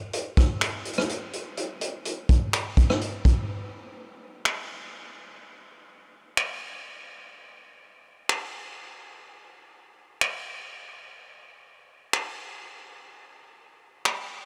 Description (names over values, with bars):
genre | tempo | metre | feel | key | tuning
hip hop | 125 BPM | 4/4 | half-time | none | none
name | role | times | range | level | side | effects
vintage drum kit | drums | 0.1-14.2 s | finger snaps, hi-hat, kick drum, rim click | -27 LUFS | equal | none
room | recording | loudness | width
light reverb | none | -27 LUFS | mono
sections
0.0-3.5 A section; 3.5-14.5 B section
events
break 3.5-11.2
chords
none